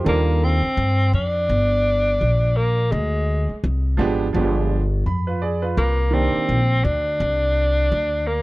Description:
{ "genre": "hip hop, jazz-hop", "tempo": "84 BPM", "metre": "4/4", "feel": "swing 58% on 16ths", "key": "unclear", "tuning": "A4 = 445 Hz", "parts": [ { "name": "clear concert grand piano", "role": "accompaniment", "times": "0.0-6.6 s", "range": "Eb3 to B5", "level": "-23 LUFS", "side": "right 4 dB", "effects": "none" }, { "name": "upright bass", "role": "bass", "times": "0.0-8.4 s", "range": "G1 to G2", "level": "-20 LUFS", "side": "equal", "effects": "none" }, { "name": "breathy tenor saxophone", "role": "melody", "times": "0.1-8.4 s", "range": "Ab3 to D4", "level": "-21 LUFS", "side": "equal", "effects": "none" } ], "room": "studio ambience", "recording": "dark, warm production", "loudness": "-18 LUFS", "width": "side -20 dB against mid", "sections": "0.0-8.4 A section", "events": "grand piano fill 4.7-5.8", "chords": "0.1 Ebmaj9#11; 2.9 Dm7b5; 4.3 G7b9; 5.8 Cm9", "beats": "| 0.06 0.77 1.49 2.20 | 2.91 3.63 4.34 5.06 | 5.77 6.49 7.20 7.91" }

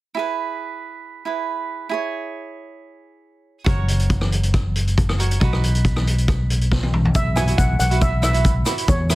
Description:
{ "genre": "calypso", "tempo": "138 BPM", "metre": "4/4", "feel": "straight", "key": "unclear", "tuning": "A4 = 441 Hz", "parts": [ { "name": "cavaquinho", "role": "accompaniment", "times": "0.1-9.2 s", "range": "D#4 to C#5", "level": "-27 LUFS", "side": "right 7 dB", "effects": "none" }, { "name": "fingered electric bass", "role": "bass", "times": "3.7-9.2 s", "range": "F#1 to E2", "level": "-20 LUFS", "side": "equal", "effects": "none" }, { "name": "street-band drum kit", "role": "drums", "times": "3.7-9.2 s", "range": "hi-hat, kick drum, rim click, snare drum, toms", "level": "-20 LUFS", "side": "equal", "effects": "soft clipping on kick" }, { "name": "steel pan", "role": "melody", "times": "7.2-9.2 s", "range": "C#5 to G#5", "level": "-24 LUFS", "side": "equal", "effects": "ping-pong delay" }, { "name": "tube shaker", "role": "percussion", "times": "7.2-9.2 s", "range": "none", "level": "-33 LUFS", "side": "left 8 dB", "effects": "none" } ], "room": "little or no reverb", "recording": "dense, heavily limited modern master", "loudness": "-18 LUFS", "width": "side -17 dB against mid", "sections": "0.2-7.1 A section; 7.1-9.2 B section", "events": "drum fill 6.7-7.1", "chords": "0.2 E; 1.9 C#m; 3.7 F#; 5.4 B; 7.1 Bsus4", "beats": "| 0.17 0.61 1.04 1.48 | 1.92 2.35 2.79 3.23 | 3.66 4.10 4.54 4.97 | 5.41 5.84 6.28 6.71 | 7.15 7.58 8.02 8.45 | 8.88" }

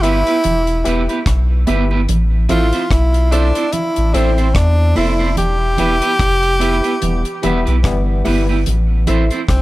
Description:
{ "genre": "roots reggae", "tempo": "73 BPM", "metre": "4/4", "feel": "swing 57% on 16ths", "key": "A minor", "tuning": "A4 = 440 Hz", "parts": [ { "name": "clear tenor saxophone", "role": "melody", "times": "0.0-9.6 s", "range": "C4 to G4", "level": "-18 LUFS", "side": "equal", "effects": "tape echo" }, { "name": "electric guitar at the edge of break-up", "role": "accompaniment", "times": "0.0-9.4 s", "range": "B3 to C5", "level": "-22 LUFS", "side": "right 5 dB", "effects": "tape echo" }, { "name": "dark grand piano", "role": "stabs", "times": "0.0-9.3 s", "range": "E4 to E5", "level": "-25 LUFS", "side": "left 3 dB", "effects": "none" }, { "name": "warm sub bass", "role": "bass", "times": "0.0-9.6 s", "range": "E1 to E2", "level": "-15 LUFS", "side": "equal", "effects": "none" }, { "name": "deep reggae drum kit", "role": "drums", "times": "0.0-9.6 s", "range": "hi-hat, kick drum, rim click", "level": "-21 LUFS", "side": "equal", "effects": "none" }, { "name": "congas", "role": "percussion", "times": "0.4-9.3 s", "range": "none", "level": "-24 LUFS", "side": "right 3 dB", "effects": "none" }, { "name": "warm trombone section", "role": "second line", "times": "7.0-8.4 s", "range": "E3 to B3", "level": "-24 LUFS", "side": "left 3 dB", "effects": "tape echo" } ], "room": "small room ambience", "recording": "none", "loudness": "-13 LUFS", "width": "side -18 dB against mid", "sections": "0.0-9.6 A section", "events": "band accent 5.4-8.7", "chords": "0.0 Em; 2.1 Am; 5.4 Em; 8.7 Am", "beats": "0.44 1.26 | 2.08 2.90 3.73 4.55 | 5.37 6.19 7.02 7.84 | 8.66 9.48" }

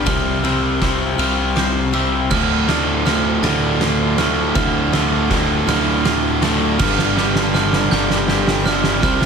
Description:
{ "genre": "post-rock", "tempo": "54 BPM (dotted quarters)", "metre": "6/8", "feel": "straight", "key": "D minor", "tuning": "A4 = 442 Hz", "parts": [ { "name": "shimmering ambient pad", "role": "sustained chords", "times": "0.0-9.3 s", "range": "F4 to A5", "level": "-32 LUFS", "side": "right 3 dB", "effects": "none" }, { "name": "glockenspiel with brass mallets", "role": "arpeggios", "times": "0.0-9.3 s", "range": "D6 to A6", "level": "-25 LUFS", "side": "right 10 dB", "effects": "slapback echo" }, { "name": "twangy electric guitar", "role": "arpeggios", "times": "0.0-9.3 s", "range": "D2 to C5", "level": "-28 LUFS", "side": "right 2 dB", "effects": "wide subtle chorus, slapback echo" }, { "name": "distorted electric guitar", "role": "riff", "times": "0.0-9.3 s", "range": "D2 to C4", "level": "-20 LUFS", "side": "left 7 dB", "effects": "distortion" }, { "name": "fuzz fingered electric bass", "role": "bass", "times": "0.0-9.3 s", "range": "G1 to D2", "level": "-23 LUFS", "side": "right 1 dB", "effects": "overdrive" }, { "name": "oversized low-tuned drum kit", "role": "drums", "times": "0.1-9.3 s", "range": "crash cymbal, kick drum, ride cymbal, snare drum", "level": "-20 LUFS", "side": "right 1 dB", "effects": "none" }, { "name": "fuzz guitar", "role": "riff", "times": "2.3-9.3 s", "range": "D2 to C4", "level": "-21 LUFS", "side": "right 15 dB", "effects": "distortion" } ], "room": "light reverb, small room ambience", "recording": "none", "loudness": "-15 LUFS", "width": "side -6 dB against mid", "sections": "0.0-9.3 A section", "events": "build-up 0.0-9.3; drum fill 0.0-9.3", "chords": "0.1 C7sus4; 2.3 Dm; 6.8 Gm7", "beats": "| 0.07 1.20 | 2.32 3.44 | 4.56 5.68 | 6.80 7.92 | 9.04" }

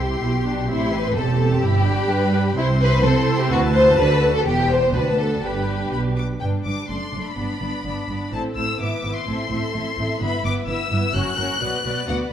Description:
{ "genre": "quick classical-period movement for string orchestra", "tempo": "128 BPM", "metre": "2/4", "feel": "straight", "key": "G major", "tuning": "A4 = 440 Hz", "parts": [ { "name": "rich symphonic violin section", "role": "melody", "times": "0.0-12.2 s", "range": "F#5 to F#6", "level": "-28 LUFS", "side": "left 4 dB", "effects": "none" }, { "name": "warm symphonic violin section", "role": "second line", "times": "0.0-12.3 s", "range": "D4 to E5", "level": "-23 LUFS", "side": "left 2 dB", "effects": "none" }, { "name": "warm studio viola section", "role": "accompaniment", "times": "0.0-12.3 s", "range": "G3 to C5", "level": "-27 LUFS", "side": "right 1 dB", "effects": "none" }, { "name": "warm symphonic cello section", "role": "bass", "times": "0.0-12.2 s", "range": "D2 to C4", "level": "-26 LUFS", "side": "right 1 dB", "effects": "none" }, { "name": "warm symphonic double bass section", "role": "bass", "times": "0.0-12.2 s", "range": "E1 to C3", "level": "-24 LUFS", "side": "right 2 dB", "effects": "none" } ], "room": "moderate scoring stage reverb, RT60 1.6 s", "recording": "dark, warm production", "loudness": "-18 LUFS", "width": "side -10 dB against mid", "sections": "0.0-6.4 A section; 6.4-12.3 B section", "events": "none", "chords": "0.0 C; 0.7 Am7; 1.6 Em/G; 2.6 C; 3.5 D; 4.5 Em; 4.9 D; 5.4 G; 6.9 D7/F#; 7.4 G; 8.3 Am; 8.8 E7/G#; 9.3 Am; 10.2 Em/G; 11.1 F#; 11.6 Bm", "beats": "0.22 | 0.69 1.16 | 1.63 2.10 | 2.57 3.03 | 3.50 3.97 | 4.46 4.94 | 5.43 5.92 | 6.42 6.89 | 7.38 7.86 | 8.33 8.80 | 9.27 9.74 | 10.21 10.68 | 11.14 11.61 | 12.08" }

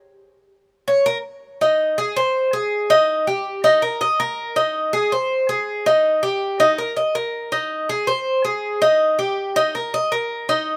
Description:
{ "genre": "latin", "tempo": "162 BPM", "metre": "4/4", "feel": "straight", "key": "Ab major", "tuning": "A4 = 441 Hz", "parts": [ { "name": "Cuban tres", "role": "solo", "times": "0.9-10.8 s", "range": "Eb4 to Eb5", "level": "-20 LUFS", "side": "equal", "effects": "none" } ], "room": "light reverb, small room ambience", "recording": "rough home demo mix", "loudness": "-20 LUFS", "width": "mono", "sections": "0.0-1.6 A section; 1.6-10.8 B section", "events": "Cuban tres solo 0.0-1.6", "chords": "none", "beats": "| 0.14 0.51 0.87 1.24 | 1.61 1.98 2.35 2.72 | 3.09 3.46 3.83 4.20 | 4.57 4.94 5.31 5.68 | 6.05 6.42 6.79 7.16 | 7.53 7.90 8.27 8.64 | 9.01 9.38 9.75 10.12 | 10.49" }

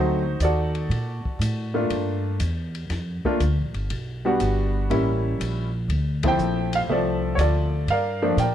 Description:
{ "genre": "jazz piano trio", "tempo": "120 BPM", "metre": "4/4", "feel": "swing 68% on 8ths", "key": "unclear", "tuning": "A4 = 441 Hz", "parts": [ { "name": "warm upright piano", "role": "melody", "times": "0.0-8.5 s", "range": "F3 to G5", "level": "-23 LUFS", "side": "equal", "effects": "plate reverb" }, { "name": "upright bass", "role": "bass", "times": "0.0-8.5 s", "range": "G1 to Bb2", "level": "-24 LUFS", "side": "equal", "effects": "none" }, { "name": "open jazz drum kit", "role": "drums", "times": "0.4-8.5 s", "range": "hi-hat, kick drum, ride cymbal, snare drum", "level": "-35 LUFS", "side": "left 2 dB", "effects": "none" } ], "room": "light reverb", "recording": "none", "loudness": "-21 LUFS", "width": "side -10 dB against mid", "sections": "0.0-8.5 A section", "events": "band accent 6.1", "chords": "0.0 D7b9; 1.9 Gm9; 3.9 Gmaj7; 4.9 A7b9; 5.9 Dm7; 7.9 Gm7", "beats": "0.41 0.91 1.41 | 1.91 2.41 2.91 3.41 | 3.90 4.40 4.90 5.40 | 5.90 6.39 6.89 7.39 | 7.88 8.38" }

